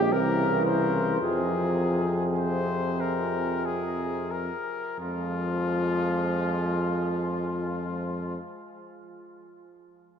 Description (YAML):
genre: classical, hymn-like piece for brass band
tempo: 44-58 BPM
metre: 3/4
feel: rubato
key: F minor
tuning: A4 = 441 Hz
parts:
  - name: clear cornet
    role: melody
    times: 0.0-8.4 s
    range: F4 to C5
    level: -32 LUFS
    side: left 5 dB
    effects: none
  - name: mellow flugelhorn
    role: second line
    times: 0.0-8.4 s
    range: Ab3 to C5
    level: -34 LUFS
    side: right 4 dB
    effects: none
  - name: mellow euphonium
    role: accompaniment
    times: 0.0-8.4 s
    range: E3 to Ab3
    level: -32 LUFS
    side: left 2 dB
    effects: none
  - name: clear tuba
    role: bass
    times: 0.0-8.4 s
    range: Bb1 to F2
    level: -29 LUFS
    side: equal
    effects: none
  - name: brilliant trombone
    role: accompaniment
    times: 0.1-8.4 s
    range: C3 to F3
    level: -36 LUFS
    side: right 3 dB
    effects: none
room: wet cathedral reverb, RT60 5.0 s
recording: in a vast, echoing space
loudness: -25 LUFS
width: side -7 dB against mid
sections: 0.0-5.0 A section; 5.0-9.1 B section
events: slowing down 0.0-5.0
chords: 0.1 C7b9; 1.2 Fm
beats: 0.13 | 1.21 2.39 3.64 | 4.99 6.35 7.72